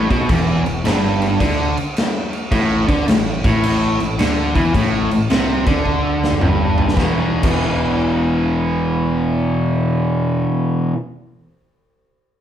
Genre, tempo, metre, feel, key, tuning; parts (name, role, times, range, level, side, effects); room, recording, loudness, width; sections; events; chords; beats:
blues rock power trio and southern rock; 108 BPM; 4/4; swing 66% on 8ths; A4 = 440 Hz
overdriven electric guitar; riff; 0.0-11.0 s; E2 to E3; -17 LUFS; equal
fuzz picked electric bass; bass; 0.0-10.4 s; E1 to E2; -24 LUFS; equal; overdrive
big rock drum kit; drums; 0.1-7.6 s; crash cymbal, kick drum, snare drum, toms; -20 LUFS; equal
moderate large studio reverb, RT60 0.8 s; band playing live in one room, tape saturation; -15 LUFS; side -10 dB against mid
0.0-7.0 A section; 7.0-9.2 B section
drum fill 5.9-7.0
0.0 E5; 2.5 A5; 7.0 E5
| 0.29 0.85 1.41 1.96 | 2.52 3.08 3.63 4.19 | 4.75 5.30 5.86 6.42 | 6.97 7.53 8.09 8.64